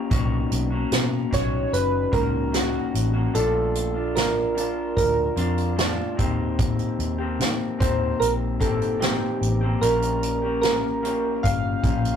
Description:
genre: indie pop, bedroom pop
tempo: 74 BPM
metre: 4/4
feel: straight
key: unclear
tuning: A4 = 440 Hz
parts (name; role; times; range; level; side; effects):
- electric guitar through a small old amp; accompaniment; 0.0-12.2 s; Bb2 to G4; -27 LUFS; left 3 dB; warbly pitch drift
- vintage muted fingered electric bass; bass; 0.1-12.2 s; F#1 to Eb3; -27 LUFS; equal; none
- unplugged drum kit; drums; 0.1-12.2 s; hi-hat, kick drum, snare drum; -26 LUFS; equal; none
- soft electric-piano-like synth keys; melody; 1.3-12.2 s; F#4 to F5; -24 LUFS; right 2 dB; chorus
room: moderate small room ambience, RT60 0.5 s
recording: rough rehearsal-room recording, tube saturation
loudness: -21 LUFS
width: side -8 dB against mid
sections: 0.1-12.2 A section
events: none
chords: 0.1 Bmaj9; 3.3 Bbmaj7; 6.2 Eb6; 9.8 Bbm6

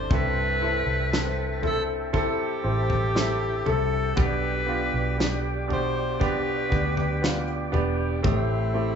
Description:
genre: pop ballad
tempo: 59 BPM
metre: 4/4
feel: straight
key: C major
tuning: A4 = 441 Hz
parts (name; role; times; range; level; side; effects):
- bright alto saxophone; melody; 0.0-9.0 s; E4 to C5; -29 LUFS; left 1 dB; digital delay
- clear grand piano; accompaniment; 0.0-9.0 s; G2 to A4; -29 LUFS; right 2 dB; none
- tonewheel organ; sustained chords; 0.0-9.0 s; G4 to D6; -36 LUFS; equal; overdrive, slow rotary speaker
- flamenco guitar; arpeggios; 0.0-9.0 s; A2 to B4; -35 LUFS; left 8 dB; none
- vintage muted fingered electric bass; bass; 0.0-9.0 s; E1 to D2; -28 LUFS; equal; none
- loose indie drum kit; drums; 0.1-8.5 s; kick drum, snare drum, toms; -27 LUFS; left 1 dB; none
room: moderate large studio reverb, RT60 0.9 s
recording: band playing live in one room, nothing above 7.8 kHz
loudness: -22 LUFS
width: side -7 dB against mid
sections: 0.0-9.0 A section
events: none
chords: 0.1 C6; 4.2 G/B; 8.2 Am7

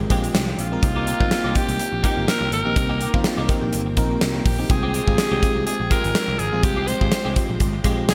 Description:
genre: 1980s-style pop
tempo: 124 BPM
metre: 4/4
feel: swing 55% on 16ths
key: C minor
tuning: A4 = 440 Hz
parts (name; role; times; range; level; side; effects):
- FM electric piano; accompaniment; 0.0-8.1 s; Ab3 to Bb4; -28 LUFS; equal; chorus
- granular cloud pad; sustained chords; 0.0-8.1 s; Eb3 to G5; -36 LUFS; equal; none
- twelve-string electric guitar; riff; 0.0-8.1 s; Ab3 to G4; -34 LUFS; equal; ensemble chorus, digital delay
- picked electric bass; bass; 0.0-8.1 s; G1 to C2; -29 LUFS; equal; none
- gated 80s drum kit; drums; 0.1-8.1 s; hi-hat, kick drum, snare drum; -24 LUFS; equal; none
- raspy alto saxophone; melody; 0.6-8.1 s; F4 to C5; -28 LUFS; equal; digital delay
room: moderate lush hall reverb, RT60 1.8 s, small room ambience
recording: bright 1980s-style digital production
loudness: -21 LUFS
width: mono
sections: 0.0-8.1 A section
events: none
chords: 0.0 Fmadd9; 0.8 Cm7; 4.7 Fmadd9

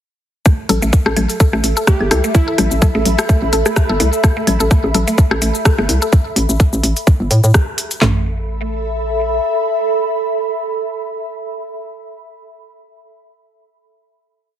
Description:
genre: minimal techno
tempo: 127 BPM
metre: 4/4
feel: swing 55% on 16ths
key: unclear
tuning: A4 = 440 Hz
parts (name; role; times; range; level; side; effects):
- mallet-like synth pluck; riff; 0.5-8.2 s; A3 to A4; -22 LUFS; equal; chorus, sidechain pumping, tape echo
- garage drum kit; drums; 0.5-8.1 s; handclaps, kick drum, snare drum, toms; -11 LUFS; equal; studio reverb
- minimal click drum kit; drums; 0.5-8.0 s; hi-hat, rim click, shaker; -20 LUFS; left 1 dB; studio reverb
- electronic rim click, congas, bongos and claves; percussion; 0.5-5.9 s; none; -21 LUFS; left 3 dB; studio reverb, tape echo
- ethereal airy pad; texture; 1.3-11.1 s; A4 to B5; -21 LUFS; right 1 dB; ensemble chorus, built-in reverb, sidechain pumping
- hollow knocking FM bass; bass; 0.7-9.4 s; G1 to A2; -16 LUFS; equal; sidechain pumping
- plucky unison lead; melody; 1.9-2.7 s; E4 to G4; -24 LUFS; right 1 dB; tape echo
room: light reverb, digital ambience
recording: heavily compressed radio sound, multiband compression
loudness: -13 LUFS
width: side -11 dB against mid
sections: 0.5-8.0 drop; 8.0-11.8 final chord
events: drop 0.5-8.0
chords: 0.5 A5

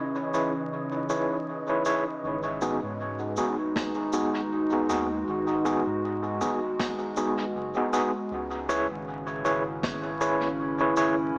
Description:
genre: ambient dub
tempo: 79 BPM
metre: 4/4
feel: swing 56% on 16ths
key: unclear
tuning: A4 = 440 Hz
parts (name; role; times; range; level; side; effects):
- warbly tape-like pad; sustained chords; 0.0-11.4 s; C#3 to B4; -33 LUFS; equal; chorus, built-in reverb
- wind-like tuned noise texture; texture; 0.0-2.3 s; D#4 to D#5; -40 LUFS; equal; built-in reverb
- overdriven tine electric piano; stabs; 0.3-11.1 s; B3 to C#5; -30 LUFS; equal; fast tremolo, dub echo
- cabasa and snare drum; drums; 0.3-11.1 s; none; -40 LUFS; equal; dub echo
- warm sub bass; bass; 2.2-11.4 s; D#1 to G#2; -43 LUFS; equal; tube saturation
- electronic kick drum; drums; 3.8-10.0 s; none; -38 LUFS; equal; none
room: moderate plate reverb, RT60 2.1 s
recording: echo-heavy mix, vinyl crackle, small speaker sound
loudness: -28 LUFS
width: mono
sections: 0.0-2.2 A section; 2.2-11.4 B section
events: none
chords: 0.0 C#m7; 2.2 G#m7; 8.3 C#m7

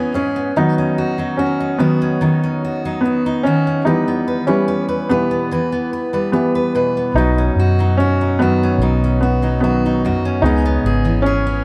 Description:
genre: folk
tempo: 73 BPM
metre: 4/4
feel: straight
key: B major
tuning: A4 = 441 Hz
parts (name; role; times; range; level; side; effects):
- felt-muted upright piano; melody; 0.0-11.6 s; D#3 to D#4; -20 LUFS; equal; none
- fingerpicked steel-string acoustic guitar; accompaniment; 0.0-11.6 s; F#2 to B4; -22 LUFS; equal; none
- vintage muted fingered electric bass; bass; 7.1-11.6 s; G#1 to F#2; -20 LUFS; equal; none
room: moderate plate reverb, RT60 2.6 s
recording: none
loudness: -17 LUFS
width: mono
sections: 0.0-11.6 A section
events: none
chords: 0.0 C#m7; 0.6 Badd9/D#; 3.8 Em; 7.1 Badd9; 10.4 C#m7

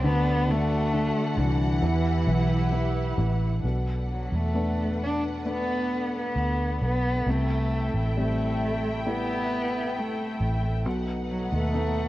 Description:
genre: pop ballad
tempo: 67 BPM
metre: 4/4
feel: straight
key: unclear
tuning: A4 = 440 Hz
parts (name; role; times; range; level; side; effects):
- dark cello; melody; 0.0-12.1 s; E3 to D4; -28 LUFS; equal; none
- felt-muted upright piano; accompaniment; 0.0-12.1 s; B2 to E4; -31 LUFS; left 1 dB; none
- dark studio string section; sustained chords; 0.0-12.1 s; D4 to G5; -34 LUFS; equal; none
- vintage muted fingered electric bass; bass; 0.0-12.1 s; A1 to E2; -27 LUFS; equal; none
room: light reverb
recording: worn, warbling old tape, cassette tape, warbly pitch drift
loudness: -24 LUFS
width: side -16 dB against mid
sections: 0.0-3.6 A section; 3.6-12.1 B section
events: none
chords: 0.0 D; 1.8 Emadd9; 3.6 Bm7; 7.3 Am7; 10.9 B7

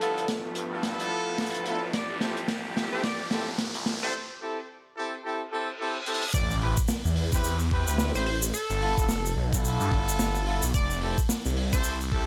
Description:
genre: glitch hop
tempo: 109 BPM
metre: 4/4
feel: swing 59% on 16ths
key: A minor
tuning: A4 = 440 Hz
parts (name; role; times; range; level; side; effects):
- sync lead; melody; 0.0-11.9 s; A4 to D5; -37 LUFS; equal; chorus, delay
- rich symphonic string section; sustained chords; 0.0-4.1 s; F3 to G4; -39 LUFS; equal; sidechain pumping
- clear horn section; stabs; 0.0-12.3 s; B3 to B4; -35 LUFS; equal; vintage 12-bit sampler grit, sidechain pumping, delay
- phased detuned saw bass; bass; 0.0-12.3 s; F1 to G2; -32 LUFS; equal; phaser, high-pass filter
- open jazz drum kit; drums; 0.0-12.2 s; hi-hat, snare drum; -35 LUFS; equal; none
- riser, reverse cymbal and impact; sound effects; 0.4-8.5 s; none; -40 LUFS; equal; none
- electronic kick drum; drums; 0.3-12.2 s; none; -30 LUFS; equal; high-pass filter on kick
- egg shaker; percussion; 6.3-12.1 s; none; -36 LUFS; equal; none
room: light reverb, studio ambience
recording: none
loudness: -28 LUFS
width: mono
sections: 0.0-6.3 A section; 6.3-12.3 B section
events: build-up 0.0-6.3; drum fill 0.0-4.1, 6.1; filter sweep on analog synth lead 0.0-6.3; riser 0.4-4.1; break 4.1-6.3; reverse cymbal 5.5-6.3; drop 6.3-12.3; impact 6.3-8.5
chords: 0.0 G13; 1.9 Fmaj9; 4.1 C; 6.3 Am7; 8.5 G13; 10.7 Fmaj9

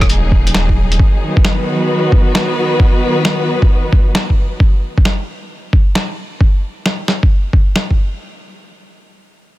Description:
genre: future garage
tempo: 133 BPM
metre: 4/4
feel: swing 66% on 16ths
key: unclear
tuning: A4 = 440 Hz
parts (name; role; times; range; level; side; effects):
- warm studio string section; sustained chords; 0.0-4.6 s; Db3 to B4; -17 LUFS; equal; sidechain pumping
- warm sub bass; bass; 0.0-1.0 s; Eb1; -15 LUFS; equal; sidechain pumping
- electronic kick drum; drums; 0.0-8.0 s; none; -11 LUFS; equal; none
- lo-fi sampler-style drum kit; drums; 0.0-7.9 s; hi-hat, rim click, snare drum; -19 LUFS; equal; none
room: little or no reverb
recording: dense, heavily limited modern master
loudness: -11 LUFS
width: side -17 dB against mid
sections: 0.0-8.2 A section; 8.2-9.6 B section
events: none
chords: 0.0 Ebm7; 1.0 B/D#; 8.2 N.C.

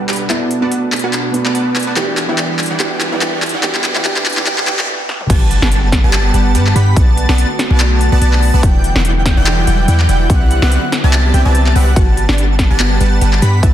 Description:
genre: future bass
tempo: 144 BPM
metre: 4/4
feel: swing 56% on 16ths, half-time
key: unclear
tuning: A4 = 441 Hz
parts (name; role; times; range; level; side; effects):
- warm concert grand piano; accompaniment; 0.0-5.3 s; B2 to F#5; -22 LUFS; right 3 dB; sidechain pumping, dub echo
- airy breathy pad; sustained chords; 0.0-13.7 s; B2 to F#5; -24 LUFS; equal; chorus, sidechain pumping
- supersaw stab; riff; 0.0-13.7 s; E3 to B5; -21 LUFS; right 1 dB; sidechain pumping, low-pass filter, dub echo
- riser and impact; sound effects; 1.2-7.0 s; none; -27 LUFS; equal; none
- big-room dance drum kit; drums; 0.1-13.7 s; crash cymbal, handclaps, hi-hat, ride cymbal, snare drum, toms; -18 LUFS; equal; none
- wide unison pluck; melody; 0.3-4.9, 12.0-13.7 s; B3 to G5; -24 LUFS; right 1 dB; sidechain pumping, dub echo
- airy dreamy lead; arpeggios; 5.3-13.7 s; F#5 to B5; -22 LUFS; right 1 dB; chorus, sidechain pumping
- warm 808-style bass; bass; 5.3-13.7 s; E1 to G2; -12 LUFS; equal; tube saturation, sidechain pumping
- electronic kick drum; drums; 5.3-13.7 s; none; -12 LUFS; equal; none
room: light reverb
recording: dense, heavily limited modern master, high-pass filter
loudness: -11 LUFS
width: side -11 dB against mid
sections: 0.0-5.3 A section; 5.3-13.7 B section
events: build-up 0.0-5.3; drum fill 0.0-4.9, 5.1; filter sweep on supersaw synth 0.0-5.3; filter sweep 0.0-5.3; stop 4.9-5.3; drop 5.3-13.7; impact 5.3-7.0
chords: 0.3 Bm7; 2.0 Em9; 3.6 Cmaj9#11; 5.3 Gmaj7; 7.0 Bm7; 8.6 Em9; 10.3 Cmaj9#11; 12.0 Gmaj7

